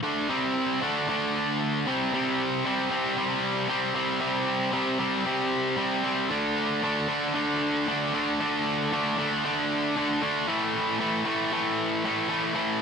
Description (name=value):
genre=metal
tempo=115 BPM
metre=4/4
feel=straight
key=unclear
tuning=A4 = 438 Hz
part: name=high-gain distorted guitar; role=solo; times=0.0-12.8 s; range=A2 to D4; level=-24 LUFS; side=equal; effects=distortion
room=moderate studio reverb, RT60 0.5 s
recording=none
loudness=-24 LUFS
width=side -6 dB against mid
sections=0.0-2.1 A section; 2.1-12.8 B section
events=none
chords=0.0 C5; 1.1 D5; 1.9 C5; 6.3 D5; 10.5 A5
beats=| 0.04 0.56 1.08 1.60 | 2.13 2.65 3.17 3.70 | 4.22 4.74 5.27 5.79 | 6.31 6.83 7.36 7.88 | 8.40 8.92 9.44 9.96 | 10.48 11.00 11.52 12.04 | 12.56